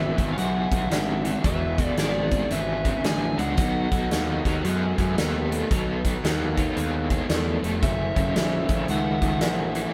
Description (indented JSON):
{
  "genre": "blues rock power trio and southern rock",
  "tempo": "113 BPM",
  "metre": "4/4",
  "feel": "swing 64% on 8ths",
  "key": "B mixolydian",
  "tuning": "A4 = 439 Hz",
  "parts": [
    { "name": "overdriven slide guitar", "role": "melody", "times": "0.0-9.9 s", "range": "D5 to G#5", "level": "-32 LUFS", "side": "equal", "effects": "none" },
    { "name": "dark smooth lead guitar", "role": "second line", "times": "0.0-9.9 s", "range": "G#4 to E5", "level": "-40 LUFS", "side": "equal", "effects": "overdrive" },
    { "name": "overdriven tonewheel organ", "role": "sustained chords", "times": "0.0-9.9 s", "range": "A3 to A4", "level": "-40 LUFS", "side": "equal", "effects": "none" },
    { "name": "raw garage guitar", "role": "riff", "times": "0.0-9.9 s", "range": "E2 to A3", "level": "-31 LUFS", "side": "equal", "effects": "overdrive, tremolo" },
    { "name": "fuzz picked electric bass", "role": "bass", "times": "0.0-9.9 s", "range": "E1 to F#2", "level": "-29 LUFS", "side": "equal", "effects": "overdrive" },
    { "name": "big rock drum kit", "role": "drums", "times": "0.2-9.8 s", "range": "hi-hat, kick drum, snare drum", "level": "-29 LUFS", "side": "equal", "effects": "none" }
  ],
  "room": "light reverb",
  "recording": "band playing live in one room",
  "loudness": "-24 LUFS",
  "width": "mono",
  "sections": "0.0-9.9 A section",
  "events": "none",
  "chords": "0.0 E7; 3.6 B7; 7.8 F#7#9",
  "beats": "0.38 0.92 | 1.45 1.98 2.52 3.05 | 3.58 4.12 4.65 5.18 | 5.71 6.24 6.77 7.30 | 7.83 8.36 8.89 9.42"
}